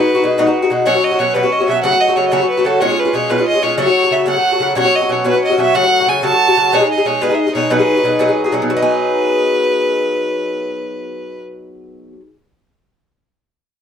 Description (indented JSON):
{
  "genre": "celtic folk",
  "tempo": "123 BPM (dotted quarters)",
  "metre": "6/8",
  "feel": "straight",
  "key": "B mixolydian",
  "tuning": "A4 = 440 Hz",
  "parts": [
    { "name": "clear fiddle", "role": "melody", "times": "0.0-11.4 s", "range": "A4 to A5", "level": "-16 LUFS", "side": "right 1 dB", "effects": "plate reverb" },
    { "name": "Irish bouzouki", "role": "accompaniment", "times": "0.0-12.3 s", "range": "B2 to G#4", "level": "-15 LUFS", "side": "left 1 dB", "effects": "none" }
  ],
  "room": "wet studio reverb, RT60 0.6 s",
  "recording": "dark, warm production",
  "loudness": "-12 LUFS",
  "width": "side -8 dB against mid",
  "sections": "0.9-8.7 A section; 8.7-10.6 B section",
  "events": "none",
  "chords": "0.0 B6; 0.9 Bsus2; 1.8 F#m; 2.8 C#7; 3.8 F#m; 4.8 Bsus2; 5.7 F#m; 6.7 G#m; 7.7 B6",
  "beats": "0.38 | 0.86 1.35 | 1.84 2.33 | 2.81 3.30 | 3.79 4.28 | 4.77 5.26 | 5.75 6.23 | 6.72 7.21 | 7.70 8.20 | 8.69 9.18 | 9.67 10.16"
}